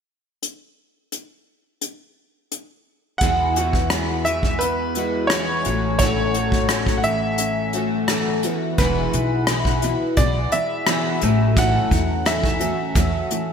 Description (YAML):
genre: folk rock and heartland rock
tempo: 86 BPM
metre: 4/4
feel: straight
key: E major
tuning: A4 = 439 Hz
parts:
  - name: soft brush drum kit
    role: drums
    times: 0.4-13.5 s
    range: hi-hat, kick drum, rim click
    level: -23 LUFS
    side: equal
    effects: gated reverb
  - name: bright concert grand piano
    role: melody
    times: 3.2-13.5 s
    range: B4 to F#5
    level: -24 LUFS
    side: right 2 dB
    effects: digital delay
  - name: picked twelve-string acoustic guitar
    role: accompaniment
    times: 3.2-13.5 s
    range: A2 to F#4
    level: -25 LUFS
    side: left 4 dB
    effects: analog chorus
  - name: electric guitar through a small old amp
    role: riff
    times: 3.2-13.5 s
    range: E2 to F#4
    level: -26 LUFS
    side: equal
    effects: lush chorus
  - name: upright bass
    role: bass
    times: 3.2-13.2 s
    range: E1 to E2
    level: -25 LUFS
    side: right 1 dB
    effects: none
room: moderate lush hall reverb, RT60 2.3 s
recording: bright 1980s-style digital production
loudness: -18 LUFS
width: side -7 dB against mid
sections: 0.4-3.2 A section; 3.2-8.8 B section; 8.8-13.5 C section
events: none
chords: 0.4 N.C.; 3.2 Eadd9; 5.7 A6; 8.4 Esus2; 8.8 Eadd9; 11.2 A6